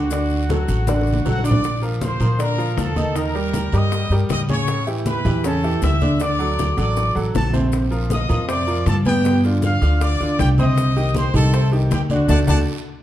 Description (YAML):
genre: latin, salsa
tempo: 158 BPM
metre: 4/4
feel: straight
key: unclear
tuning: A4 = 440 Hz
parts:
  - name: bright trumpet section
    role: melody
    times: 0.0-12.6 s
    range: F#4 to E6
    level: -25 LUFS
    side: equal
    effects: none
  - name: bright upright piano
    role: accompaniment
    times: 0.0-12.6 s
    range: B2 to Eb5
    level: -22 LUFS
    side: right 1 dB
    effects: none
  - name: upright bass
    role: bass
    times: 0.0-12.6 s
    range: A1 to Bb2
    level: -20 LUFS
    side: equal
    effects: none
  - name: bongos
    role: percussion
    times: 0.1-12.6 s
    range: none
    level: -32 LUFS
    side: left 7 dB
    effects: none
  - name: congas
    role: percussion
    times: 0.1-12.6 s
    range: none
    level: -24 LUFS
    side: left 1 dB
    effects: none
  - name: guiro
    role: percussion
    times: 0.1-12.6 s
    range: none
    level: -40 LUFS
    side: right 7 dB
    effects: none
  - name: maracas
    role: percussion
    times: 0.1-12.6 s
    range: none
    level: -42 LUFS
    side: left 8 dB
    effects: none
room: moderate large studio reverb, RT60 1.2 s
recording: dark, warm production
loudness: -16 LUFS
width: side -12 dB against mid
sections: 0.0-1.6 A section; 1.6-13.0 B section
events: drum fill 0.9-1.6, 7.0-7.7, 12.7-13.0; band accent 12.3-13.0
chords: 0.1 D; 1.6 Bb; 3.2 Eb; 4.7 A7; 6.2 D; 7.7 Bbsus2; 9.2 G7; 10.8 Cm; 12.3 D